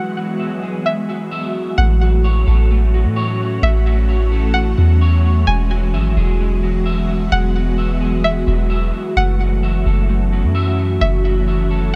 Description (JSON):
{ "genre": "hip hop", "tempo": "130 BPM", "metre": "4/4", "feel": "half-time", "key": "unclear", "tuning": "A4 = 440 Hz", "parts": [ { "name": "string-like resonator pluck", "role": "melody", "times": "0.0-11.4 s", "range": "E5 to G#5", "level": "-26 LUFS", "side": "equal", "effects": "chorus, low-pass filter, delay" }, { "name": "ethereal airy pad", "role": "sustained chords", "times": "0.0-12.0 s", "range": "E3 to F#4", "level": "-25 LUFS", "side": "equal", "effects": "ensemble chorus, built-in reverb, phaser, low-pass filter" }, { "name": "electric guitar at the edge of break-up", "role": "arpeggios", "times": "0.0-12.0 s", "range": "G#3 to E5", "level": "-27 LUFS", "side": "equal", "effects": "ensemble chorus, low-pass filter, delay" }, { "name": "soft 808-style bass", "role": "bass", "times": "1.8-12.0 s", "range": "E1 to A2", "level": "-18 LUFS", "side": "equal", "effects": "none" } ], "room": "light reverb, digital ambience", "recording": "dark, warm production", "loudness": "-17 LUFS", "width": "mono", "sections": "0.0-1.8 A section; 1.8-12.0 B section", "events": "filter sweep 0.0-1.8", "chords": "0.0 Eadd9; 1.8 A6; 5.5 Eadd9; 9.2 F#m7", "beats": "0.40 0.86 1.32 | 1.78 2.24 2.71 3.17 | 3.63 4.09 4.55 5.01 | 5.47 5.94 6.40 6.86 | 7.32 7.78 8.24 8.71 | 9.17 9.63 10.09 10.55 | 11.01 11.47 11.94" }